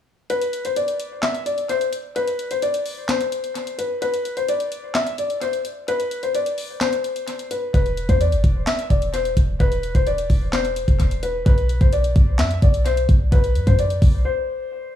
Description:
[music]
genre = hip hop, trap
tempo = 129 BPM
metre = 4/4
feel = half-time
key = unclear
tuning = A4 = 436 Hz
[part]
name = felt-muted upright piano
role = melody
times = 0.3-14.9 s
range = B4 to E5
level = -23 LUFS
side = left 3 dB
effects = low-pass filter, tape echo
[part]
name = trap drum kit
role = drums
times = 0.3-14.1 s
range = handclaps, hi-hat, kick drum, snare drum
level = -21 LUFS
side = equal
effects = none
[part]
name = clean 808-style bass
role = bass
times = 7.7-14.3 s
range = E1 to F#2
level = -19 LUFS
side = equal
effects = none
[sound]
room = little or no reverb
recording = echo-heavy mix, studio reverb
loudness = -18 LUFS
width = side -11 dB against mid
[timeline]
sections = 0.3-15.0 A section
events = kick muted 0.3-7.7; break 14.3-15.0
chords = 0.3 N.C.; 7.7 E5; 11.5 Bm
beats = | 0.30 0.76 1.23 1.69 | 2.16 2.62 3.09 3.55 | 4.02 4.48 4.95 5.41 | 5.88 6.34 6.81 7.28 | 7.74 8.21 8.67 9.13 | 9.60 10.07 10.53 11.00 | 11.46 11.93 12.39 12.86 | 13.32 13.79 14.25 14.72

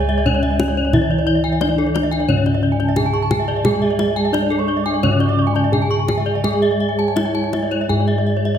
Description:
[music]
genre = Balinese gamelan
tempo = 80-88 BPM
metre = 4/4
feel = straight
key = unclear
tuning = A4 = 440 Hz
[part]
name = gamelan-type bronze metallophone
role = melody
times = 0.0-8.6 s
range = C#4 to G#4-30c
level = -21 LUFS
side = equal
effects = none
[part]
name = hollow bansuri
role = second line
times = 0.0-8.1 s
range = C#5 to D6+24c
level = -29 LUFS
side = right 6 dB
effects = none
[part]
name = gamelan-type bronze metallophone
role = accompaniment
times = 0.0-8.6 s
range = C#3 to G#3-30c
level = -23 LUFS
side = right 3 dB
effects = none
[part]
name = gamelan-type bronze metallophone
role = arpeggios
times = 0.0-8.6 s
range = C#5 to A5-20c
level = -27 LUFS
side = right 6 dB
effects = tape echo
[part]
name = gamelan-type bossed gongs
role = bass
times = 0.0-8.6 s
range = C#2 to G#4-30c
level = -21 LUFS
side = left 1 dB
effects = none
[part]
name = gamelan-type bronze metallophone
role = arpeggios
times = 0.1-8.5 s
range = A4-20c to C#6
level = -23 LUFS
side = left 6 dB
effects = none
[part]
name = kendang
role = percussion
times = 0.1-8.5 s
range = none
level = -25 LUFS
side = left 2 dB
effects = none
[sound]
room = wet recital hall reverb, RT60 1.3 s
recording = none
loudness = -15 LUFS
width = side -9 dB against mid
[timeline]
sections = 0.0-8.6 A section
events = none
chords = none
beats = 0.26 | 0.94 1.62 2.30 2.97 | 3.65 4.33 5.03 5.73 | 6.44 7.16 7.89

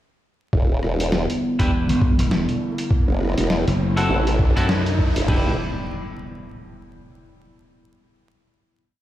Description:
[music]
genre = glitch hop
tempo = 101 BPM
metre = 4/4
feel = swing 58% on 16ths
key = E minor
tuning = A4 = 440 Hz
[part]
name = warbly tape-like pad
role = sustained chords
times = 0.5-5.6 s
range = C3 to E4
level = -27 LUFS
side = equal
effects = chorus, built-in reverb, sidechain pumping
[part]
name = formant-sweep wobble bass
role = bass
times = 0.5-5.6 s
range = E1 to A1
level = -21 LUFS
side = equal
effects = chorus, overdrive
[part]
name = boom bap sampler-style drum kit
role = drums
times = 0.5-5.4 s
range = crash cymbal, kick drum, toms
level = -20 LUFS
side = equal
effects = none
[part]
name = riser and impact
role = sound effects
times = 1.4-7.7 s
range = none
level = -31 LUFS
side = equal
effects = none
[part]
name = boom bap sampler-style drum kit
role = drums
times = 0.8-5.3 s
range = hi-hat, rim click, snare drum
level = -27 LUFS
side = equal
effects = none
[part]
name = semi-hollow electric guitar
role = stabs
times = 1.6-5.5 s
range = C4 to B4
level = -27 LUFS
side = equal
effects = spring reverb, sidechain pumping, dub echo
[part]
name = slap bass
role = bass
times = 1.6-5.1 s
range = E1 to F#2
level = -21 LUFS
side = equal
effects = tube saturation
[sound]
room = light reverb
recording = played on a big sound system in a bare room, large studio reverb, vinyl crackle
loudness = -18 LUFS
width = side -13 dB against mid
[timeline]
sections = 0.5-5.3 build; 5.3-7.7 final chord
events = build-up 0.5-5.3; riser 1.4-5.3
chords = 0.5 Em7; 2.9 F#m7b5; 5.3 Em7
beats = | 0.53 1.13 1.72 2.31 | 2.91 3.50 4.10 4.69 | 5.28 5.88 6.47 7.07

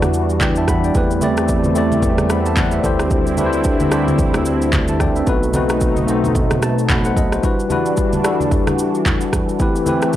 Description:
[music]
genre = amapiano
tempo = 111 BPM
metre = 4/4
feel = swing 58% on 16ths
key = A dorian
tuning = A4 = 440 Hz
[part]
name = tine electric piano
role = accompaniment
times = 0.0-10.2 s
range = E3 to B5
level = -19 LUFS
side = left 2 dB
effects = medium stereo tremolo
[part]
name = lush unison pad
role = sustained chords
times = 0.0-10.2 s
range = B2 to G4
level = -22 LUFS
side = right 1 dB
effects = chorus, phaser, sidechain pumping
[part]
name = fat analog bass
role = bass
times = 0.0-7.4 s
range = B1 to E2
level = -21 LUFS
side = equal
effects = none
[part]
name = afro-pop drum kit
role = drums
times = 0.0-10.2 s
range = handclaps, kick drum, rim click, shaker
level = -20 LUFS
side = equal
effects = overdrive
[part]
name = congas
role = percussion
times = 0.0-10.0 s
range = none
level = -24 LUFS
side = right 1 dB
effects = none
[sound]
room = little or no reverb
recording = dry, gritty hardware recording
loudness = -14 LUFS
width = side -12 dB against mid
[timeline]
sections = 0.0-10.2 A section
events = tine electric piano fill 6.4-7.4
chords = 0.0 Em9; 0.9 Am9/E; 2.8 D9sus4; 5.3 B7b9; 7.4 Em9; 9.6 Am9/E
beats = 0.41 | 0.95 1.49 2.03 2.57 | 3.11 3.65 4.19 4.73 | 5.27 5.81 6.35 6.89 | 7.43 7.97 8.52 9.06 | 9.60 10.14

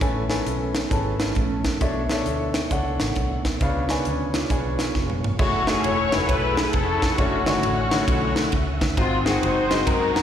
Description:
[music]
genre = uptempo gospel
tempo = 134 BPM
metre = 4/4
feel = swing 64% on 8ths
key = F# minor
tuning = A4 = 440 Hz
[part]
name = clear upright piano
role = accompaniment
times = 0.0-10.2 s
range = G#2 to A5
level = -26 LUFS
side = left 2 dB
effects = plate reverb, slapback echo
[part]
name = tonewheel organ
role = sustained chords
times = 0.0-10.2 s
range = B2 to E6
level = -32 LUFS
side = right 3 dB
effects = slow rotary speaker, chorus vibrato, plate reverb
[part]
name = vintage muted fingered electric bass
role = bass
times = 0.0-10.2 s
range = E1 to F#2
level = -28 LUFS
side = equal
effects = none
[part]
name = crisp fusion drum kit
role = drums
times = 0.0-10.2 s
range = crash cymbal, hi-hat, kick drum, ride cymbal, snare drum, toms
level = -25 LUFS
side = equal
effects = none
[part]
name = mellow electric guitar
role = second line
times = 0.9-5.2 s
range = A3 to G#4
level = -32 LUFS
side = right 8 dB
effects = plate reverb, slapback echo
[part]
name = muted studio string section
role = melody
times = 5.4-10.2 s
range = A3 to C#5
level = -23 LUFS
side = left 3 dB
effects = plate reverb, slapback echo
[sound]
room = light reverb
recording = live gig heard through the venue's PA, recital hall reverb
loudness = -20 LUFS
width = side -9 dB against mid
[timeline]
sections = 0.0-5.4 A section; 5.4-10.2 B section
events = drum fill 5.0-5.4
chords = 0.0 Amaj9; 1.8 Bm11; 3.6 C#7b9; 5.4 F#m9; 7.2 Dmaj9/F#; 9.0 G#7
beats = | 0.01 0.46 0.91 1.36 | 1.81 2.26 2.71 3.16 | 3.61 4.06 4.50 4.95 | 5.40 5.84 6.29 6.74 | 7.18 7.63 8.08 8.53 | 8.97 9.42 9.87

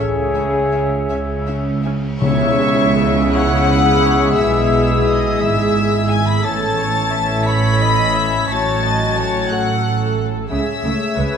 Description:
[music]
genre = cinematic, emotional film score for orchestra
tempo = 52-61 BPM (dotted quarters)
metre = 6/8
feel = rubato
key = C# minor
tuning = A4 = 440 Hz
[part]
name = warm symphonic violin section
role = melody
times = 0.0-11.4 s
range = G#5 to B6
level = -26 LUFS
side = left 3 dB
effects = none
[part]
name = bright clarinet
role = second line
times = 0.0-11.4 s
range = F#4 to C#5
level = -25 LUFS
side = left 3 dB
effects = none
[part]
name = warm oboe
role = second line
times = 0.0-11.4 s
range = C#5 to E5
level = -25 LUFS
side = left 2 dB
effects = none
[part]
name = warm symphonic violin section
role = second line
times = 0.0-11.4 s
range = C#5 to B5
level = -24 LUFS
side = left 4 dB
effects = none
[part]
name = clear symphonic viola section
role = accompaniment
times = 0.0-11.4 s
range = A3 to E5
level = -24 LUFS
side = left 2 dB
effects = none
[part]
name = warm French horn section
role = sustained chords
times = 0.0-11.4 s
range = E3 to G#4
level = -24 LUFS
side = left 2 dB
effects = none
[part]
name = dark symphonic double bass section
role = bass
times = 0.0-11.3 s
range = G#1 to C#2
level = -21 LUFS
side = right 4 dB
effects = none
[part]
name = rich symphonic cello section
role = bass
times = 0.0-11.2 s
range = G#2 to C#3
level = -22 LUFS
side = right 2 dB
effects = none
[part]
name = concert flute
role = second line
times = 2.2-11.4 s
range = C#5 to B5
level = -25 LUFS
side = left 2 dB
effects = none
[part]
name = tam-tam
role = percussion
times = 2.2-5.0 s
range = none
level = -28 LUFS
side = right 2 dB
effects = none
[part]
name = timpani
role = percussion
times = 2.2-3.3 s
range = C#3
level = -21 LUFS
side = left 3 dB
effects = none
[sound]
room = wet scoring stage reverb, RT60 1.9 s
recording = dark, warm production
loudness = -14 LUFS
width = side -7 dB against mid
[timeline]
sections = 0.0-2.2 A section; 2.2-11.4 B section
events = band accent 2.2-3.0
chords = 0.0 C#m; 4.4 E/B; 6.4 A; 8.5 F#m/A; 10.5 C#m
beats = 1.10 | 2.21 3.33 | 4.37 5.41 | 6.44 7.46 | 8.50 9.50 | 10.50

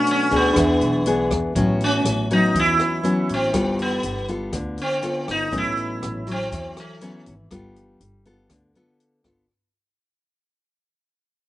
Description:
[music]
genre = bossa nova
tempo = 121 BPM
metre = 4/4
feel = straight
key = A major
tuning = A4 = 441 Hz
[part]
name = sitar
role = melody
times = 0.0-7.2 s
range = A3 to E4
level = -22 LUFS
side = right 1 dB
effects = none
[part]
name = nylon-string guitar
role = accompaniment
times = 0.0-9.5 s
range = A2 to A4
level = -23 LUFS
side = left 2 dB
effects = none
[part]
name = tine electric piano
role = accompaniment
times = 0.0-1.6 s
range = D4 to F#5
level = -24 LUFS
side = right 1 dB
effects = medium stereo tremolo
[part]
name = open jazz drum kit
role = drums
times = 0.1-9.4 s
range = hi-hat, kick drum, rim click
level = -31 LUFS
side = equal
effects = none
[part]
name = upright bass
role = bass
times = 0.3-9.5 s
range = G1 to E2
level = -29 LUFS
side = equal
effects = none
[sound]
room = little or no reverb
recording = recorded outdoors, with no room sound, nothing above 10.7 kHz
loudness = -19 LUFS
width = side -15 dB against mid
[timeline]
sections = 0.0-1.6 A section; 1.6-9.5 B section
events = fade-out 1.6-9.5; sitar solo 1.6-9.5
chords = 0.0 Bm7; 0.6 E7; 1.6 A69; 3.5 G9; 5.5 A69; 7.5 G9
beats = 0.07 0.56 1.06 | 1.55 2.05 2.55 3.04 | 3.54 4.03 4.53 5.03 | 5.52 6.02 6.51 7.01 | 7.51 8.00 8.50 8.99

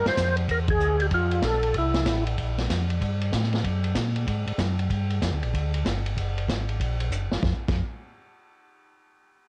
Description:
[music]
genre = soul jazz organ trio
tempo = 190 BPM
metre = 4/4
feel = swing 63% on 8ths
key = unclear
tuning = A4 = 442 Hz
[part]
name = percussive tonewheel organ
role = melody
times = 0.0-2.2 s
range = E4 to C5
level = -28 LUFS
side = equal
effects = slow rotary speaker, overdrive, chorus vibrato, cassette tape, analog delay
[part]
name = mellow tonewheel organ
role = bass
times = 0.0-7.8 s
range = Gb1 to Bb2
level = -28 LUFS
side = equal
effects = chorus vibrato, slow rotary speaker
[part]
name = vintage drum kit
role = drums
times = 0.1-7.7 s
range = crash cymbal, hi-hat, kick drum, ride cymbal, snare drum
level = -31 LUFS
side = equal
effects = cassette tape
[sound]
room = little or no reverb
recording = home recording on cassette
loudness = -26 LUFS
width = mono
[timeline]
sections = 0.0-2.4 A section; 2.4-7.4 B section; 7.4-8.7 C section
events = band accent 0.6; drum fill 7.1-7.4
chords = 0.0 Cadd9; 1.1 F; 1.7 C; 2.4 Gm9; 3.6 Gbadd9; 4.9 Gm7; 6.2 Gbadd9; 7.4 N.C.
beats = 0.17 0.49 0.80 | 1.12 1.43 1.75 2.06 | 2.38 2.69 3.01 3.32 | 3.64 3.95 4.27 4.59 | 4.90 5.22 5.53 5.85 | 6.17 6.48 6.80 7.12 | 7.43 7.75

